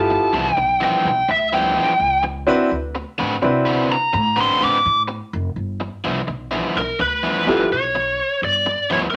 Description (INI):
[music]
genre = blues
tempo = 84 BPM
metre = 4/4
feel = swing 67% on 8ths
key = G mixolydian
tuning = A4 = 436 Hz
[part]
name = biting lead guitar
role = melody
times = 0.0-9.1 s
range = Bb4 to D6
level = -20 LUFS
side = equal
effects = overdrive
[part]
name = clear upright piano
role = accompaniment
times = 0.0-7.7 s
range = B3 to B4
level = -20 LUFS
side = equal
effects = none
[part]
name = upright bass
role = bass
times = 0.0-9.2 s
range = F#1 to C3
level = -31 LUFS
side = equal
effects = none
[part]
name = overdriven electric guitar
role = riff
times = 0.1-9.1 s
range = G2 to B4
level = -26 LUFS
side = equal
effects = none
[sound]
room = wet studio reverb, RT60 0.6 s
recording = none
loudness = -19 LUFS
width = mono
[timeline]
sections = 0.0-5.6 A section; 5.6-9.2 B section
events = lead electric guitar solo 0.0-5.6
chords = 0.0 G13; 2.7 D13; 5.6 G13